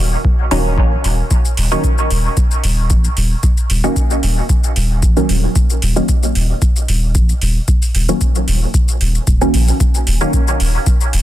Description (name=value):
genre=dub techno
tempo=113 BPM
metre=4/4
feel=swing 53% on 16ths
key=Eb minor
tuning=A4 = 440 Hz
part: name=soft dub sub bass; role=bass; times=0.0-11.2 s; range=Eb1 to Bb1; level=-15 LUFS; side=equal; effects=sidechain pumping
part: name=electronic kick drum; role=drums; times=0.2-11.0 s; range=none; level=-15 LUFS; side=equal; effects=none
part: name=filtered dub chord stab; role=stabs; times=0.5-10.4 s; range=Eb3 to Db4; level=-19 LUFS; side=right 1 dB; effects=chorus, phaser, sidechain pumping, dub echo
part: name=electronic hi-hat and shaker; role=drums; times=0.5-11.2 s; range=none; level=-23 LUFS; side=left 1 dB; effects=overdrive
room=little or no reverb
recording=dense, heavily limited modern master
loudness=-12 LUFS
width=side -13 dB against mid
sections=0.0-9.8 A section; 9.8-11.2 A section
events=filter sweep on synth stab 0.0-9.8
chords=0.0 Ebm7